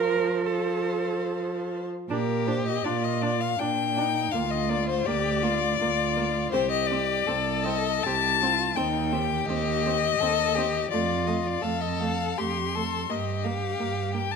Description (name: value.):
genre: classical, slow romantic movement for string quartet.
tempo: 82 BPM.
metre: 3/4.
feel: uneven beats, rubato.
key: Bb major.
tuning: A4 = 442 Hz.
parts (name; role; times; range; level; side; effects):
warm violin; melody; 0.0-14.4 s; Bb4 to C6; -27 LUFS; left 11 dB; none.
warm violin; second line; 0.0-14.4 s; D4 to C5; -32 LUFS; left 2 dB; none.
warm viola; accompaniment; 0.0-14.2 s; F3 to D4; -33 LUFS; right 4 dB; none.
warm cello; bass; 0.0-14.4 s; C2 to Bb4; -30 LUFS; right 6 dB; none.
room: light reverb.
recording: close, detailed microphones.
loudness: -24 LUFS.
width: side -5 dB against mid.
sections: 0.0-2.1 A section; 2.1-14.4 B section.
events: none.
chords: 0.0 F; 2.1 Bb; 4.3 Bb/D; 6.5 C5; 8.8 Cm/Eb; 10.9 F; 13.1 Gm7.